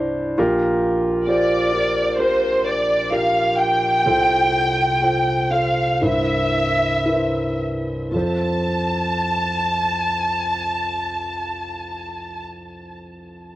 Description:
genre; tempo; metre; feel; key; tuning
pop; 55-67 BPM; 4/4; straight; F major; A4 = 439 Hz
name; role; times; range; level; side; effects
warm concert grand piano; accompaniment; 0.0-13.6 s; Bb1 to C5; -22 LUFS; equal; none
warm studio violin section; melody; 1.3-12.4 s; C5 to A5; -20 LUFS; equal; cassette tape, plate reverb
room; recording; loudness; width
moderate small room reverb, RT60 0.5 s; home recording on cassette; -17 LUFS; side -15 dB against mid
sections
0.0-8.1 A section; 8.1-12.4 B section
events
slowing down 0.4-8.1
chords
0.4 Gm7/Bb; 4.1 F/C; 6.0 C7; 8.1 F

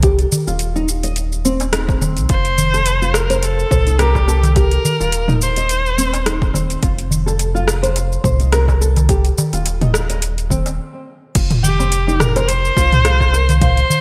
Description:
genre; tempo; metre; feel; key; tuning
organic downtempo; 106 BPM; 4/4; swing 55% on 16ths; F mixolydian; A4 = 443 Hz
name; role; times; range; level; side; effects
nylon-string guitar; arpeggios; 0.0-13.8 s; C4 to F5; -25 LUFS; equal; subtle chorus, digital delay
warm sub bass; bass; 0.0-13.8 s; Eb1 to C2; -20 LUFS; equal; sidechain pumping
deep house drum kit; drums; 0.0-14.0 s; crash cymbal, hi-hat, rim click, shaker, toms; -23 LUFS; equal; overdrive, gated reverb
electronic kick drum; drums; 0.0-13.7 s; none; -21 LUFS; equal; overdrive
darbuka; percussion; 0.3-14.0 s; none; -25 LUFS; equal; none
warm kamancheh; melody; 2.3-6.5, 11.6-14.0 s; G4 to C5; -21 LUFS; equal; digital delay
room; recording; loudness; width
light reverb, digital ambience; bright 1980s-style digital production; -16 LUFS; mono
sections
0.0-11.4 A section; 11.4-14.0 B section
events
stop 10.8-11.4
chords
0.0 F5; 11.4 Fsus2

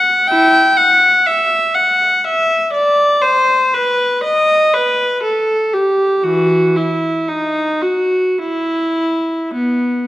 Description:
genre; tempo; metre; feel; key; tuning
classical, baroque-style suite movement for unaccompanied viola; 51-62 BPM; 4/4; rubato; E minor; A4 = 439 Hz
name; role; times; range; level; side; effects
warm viola; solo; 0.0-10.1 s; E3 to G5; -12 LUFS; equal; none
room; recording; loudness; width
wet recital hall reverb, RT60 1.4 s; none; -12 LUFS; side -15 dB against mid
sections
0.0-10.1 A section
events
none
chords
none

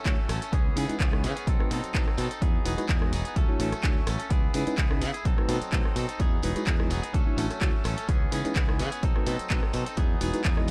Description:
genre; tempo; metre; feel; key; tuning
filtered disco house; 127 BPM; 4/4; swing 54% on 16ths; C# minor; A4 = 440 Hz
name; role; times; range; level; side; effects
bell-like tine electric piano; accompaniment; 0.0-10.7 s; G#3 to D#5; -36 LUFS; equal; phaser, vintage 12-bit sampler grit, sidechain pumping, low-pass filter
direct-recorded clean electric guitar; riff; 0.0-10.7 s; E3 to A4; -36 LUFS; equal; sidechain pumping, low-pass filter
modern bright fingered electric bass; bass; 0.1-10.7 s; E1 to C#3; -34 LUFS; equal; sidechain pumping, low-pass filter
electronic kick drum; drums; 0.1-10.6 s; none; -28 LUFS; equal; none
punchy analog drum machine; drums; 0.1-10.7 s; handclaps, hi-hat, rim click; -37 LUFS; equal; none
tambourine; percussion; 0.1-10.7 s; none; -48 LUFS; equal; sidechain pumping on perc, low-pass filter on perc
room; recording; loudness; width
digital ambience; none; -27 LUFS; mono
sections
0.0-10.7 A section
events
none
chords
0.0 Dmaj7; 0.5 C#m7; 1.5 B7b9; 2.4 Emaj9; 3.4 Dmaj7; 4.3 C#m7; 5.3 B7b9; 6.2 Emaj9; 7.1 Dmaj7; 8.1 C#m7; 9.0 B7b9; 10.0 Emaj9

